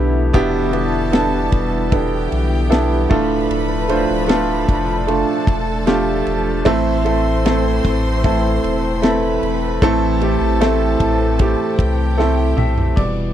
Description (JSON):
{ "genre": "pop ballad", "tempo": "76 BPM", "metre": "4/4", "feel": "straight", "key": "A minor", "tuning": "A4 = 440 Hz", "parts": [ { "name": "warm baby grand piano", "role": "accompaniment", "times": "0.0-13.3 s", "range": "A2 to E5", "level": "-18 LUFS", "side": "right 2 dB", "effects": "none" }, { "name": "lush unison pad", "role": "sustained chords", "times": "0.0-13.3 s", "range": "B2 to E4", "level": "-25 LUFS", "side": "left 2 dB", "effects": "chorus, tremolo" }, { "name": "warm sub bass", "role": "bass", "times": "0.0-13.3 s", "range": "D1 to C2", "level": "-21 LUFS", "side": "equal", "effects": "none" }, { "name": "warm studio violin section", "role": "second line", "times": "0.3-13.0 s", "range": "G4 to C6", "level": "-27 LUFS", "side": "left 1 dB", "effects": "none" }, { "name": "modern studio drum kit", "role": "drums", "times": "0.3-13.2 s", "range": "crash cymbal, kick drum, ride cymbal, snare drum, toms", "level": "-19 LUFS", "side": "left 1 dB", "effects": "none" } ], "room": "little or no reverb", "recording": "dry, close 1970s-style studio recording", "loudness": "-15 LUFS", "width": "side -11 dB against mid", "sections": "0.0-13.0 A section", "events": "drum fill 12.2-13.0", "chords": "0.0 E7sus4; 3.1 Dm; 6.7 Am", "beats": "| 0.34 1.13 1.92 2.71 | 3.50 4.29 5.08 5.87 | 6.66 7.45 8.24 9.03 | 9.82 10.61 11.40 12.19 | 12.98" }